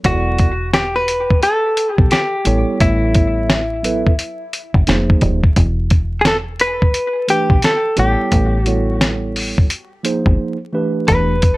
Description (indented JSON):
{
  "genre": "hip hop, jazz-hop",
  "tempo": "87 BPM",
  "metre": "4/4",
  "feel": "swing 63% on 16ths",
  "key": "E dorian",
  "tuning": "A4 = 441 Hz",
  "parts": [
    { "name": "mellow tine electric piano", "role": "accompaniment", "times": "0.0-11.4 s", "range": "E3 to D5", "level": "-20 LUFS", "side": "right 2 dB", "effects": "slow stereo tremolo, plate reverb" },
    { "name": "deep dub fingered electric bass", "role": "bass", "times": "0.0-11.6 s", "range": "Eb1 to B1", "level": "-19 LUFS", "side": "equal", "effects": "none" },
    { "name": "dusty soul sampler-style drum kit", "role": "drums", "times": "0.0-11.6 s", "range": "hi-hat, kick drum, snare drum", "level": "-15 LUFS", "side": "equal", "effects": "none" },
    { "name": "hollow-body jazz guitar", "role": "melody", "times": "0.1-11.6 s", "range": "E4 to B4", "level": "-18 LUFS", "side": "left 1 dB", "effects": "plate reverb, tape echo" }
  ],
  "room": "light reverb",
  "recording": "tape saturation, vinyl crackle",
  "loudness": "-13 LUFS",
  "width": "side -20 dB against mid",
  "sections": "0.0-11.6 A section",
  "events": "break 10.4-11.1",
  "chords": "0.0 E9sus4; 2.5 A9; 4.9 Fm7; 5.6 E5; 8.0 A9; 10.4 Fm11"
}